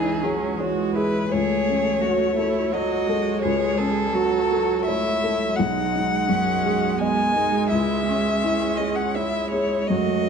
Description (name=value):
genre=neoclassical piano and strings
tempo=84 BPM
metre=3/4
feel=rubato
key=C# minor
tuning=A4 = 440 Hz
part: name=rich violin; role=melody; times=0.0-10.3 s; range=G#4 to G#5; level=-24 LUFS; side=left 3 dB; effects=none
part: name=rich cello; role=second line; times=0.0-10.3 s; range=B3 to G#4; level=-28 LUFS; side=right 8 dB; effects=none
part: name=dark upright piano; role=accompaniment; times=0.0-10.3 s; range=B1 to D#5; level=-25 LUFS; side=left 2 dB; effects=none
part: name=rich viola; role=accompaniment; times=0.0-10.3 s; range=E3 to A3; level=-28 LUFS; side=right 6 dB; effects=none
part: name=warbly tape-like pad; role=sustained chords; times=0.0-10.3 s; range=E3 to D#5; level=-31 LUFS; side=right 2 dB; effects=chorus, built-in reverb
room=moderate large studio reverb, RT60 1.2 s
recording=dark, warm production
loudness=-20 LUFS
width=side -6 dB against mid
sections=0.0-10.3 A section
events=none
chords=0.0 C#m; 1.3 F#m/C#; 5.6 B6; 7.7 C#m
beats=0.58 | 1.30 2.02 2.72 | 3.42 4.13 4.87 | 5.58 6.29 7.00 | 7.71 8.43 9.16 | 9.89